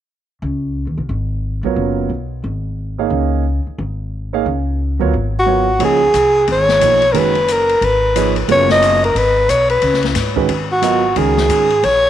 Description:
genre	modal jazz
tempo	179 BPM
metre	4/4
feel	swing 62% on 8ths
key	Db mixolydian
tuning	A4 = 440 Hz
part	upright bass	bass	0.4-12.1 s	Gb1 to Ab2	-20 LUFS	left 1 dB	none
part	warm concert grand piano	accompaniment	1.6-11.7 s	Db3 to F5	-19 LUFS	right 10 dB	none
part	growling soprano saxophone	melody	5.4-12.1 s	Gb4 to Eb5	-13 LUFS	equal	tape echo
part	open jazz drum kit	drums	5.8-11.9 s	hi-hat, kick drum, ride cymbal, snare drum	-23 LUFS	left 8 dB	none
room	moderate plate reverb, RT60 1.6 s, studio reverb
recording	1960s-style stereo with parts hard left and right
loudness	-13 LUFS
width	side -11 dB against mid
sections	0.4-5.8 A section; 5.8-12.1 B section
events	none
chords	0.4 Db9sus4; 11.2 Ebm7

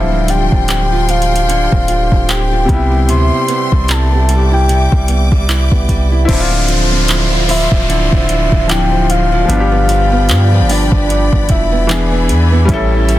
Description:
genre	contemporary R&B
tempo	75 BPM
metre	4/4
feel	swing 58% on 16ths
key	D dorian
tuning	A4 = 441 Hz
part	soft octave-layered synth lead	melody	0.0-12.3 s	D5 to C6	-18 LUFS	left 2 dB	chorus, digital delay
part	clear baby grand piano	accompaniment	0.0-13.2 s	C3 to A4	-20 LUFS	left 3 dB	none
part	warm symphonic string section	sustained chords	0.0-13.2 s	F3 to D6	-22 LUFS	left 2 dB	none
part	nylon-string guitar	arpeggios	0.0-13.2 s	G2 to G#4	-19 LUFS	right 5 dB	digital delay
part	soft 808-style bass	bass	0.0-13.2 s	D1 to G2	-14 LUFS	equal	none
part	smooth R&B drum kit	drums	0.3-13.2 s	crash cymbal, handclaps, hi-hat, kick drum	-16 LUFS	equal	none
part	downlifter	sound effects	6.3-12.7 s	none	-22 LUFS	equal	none
room	little or no reverb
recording	dense, heavily limited modern master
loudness	-10 LUFS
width	side -14 dB against mid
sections	0.0-6.3 A section; 6.3-13.2 B section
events	none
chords	0.0 Dm7; 2.7 Cmaj7; 6.3 Dm9; 9.5 G7; 11.9 E7; 12.7 A7

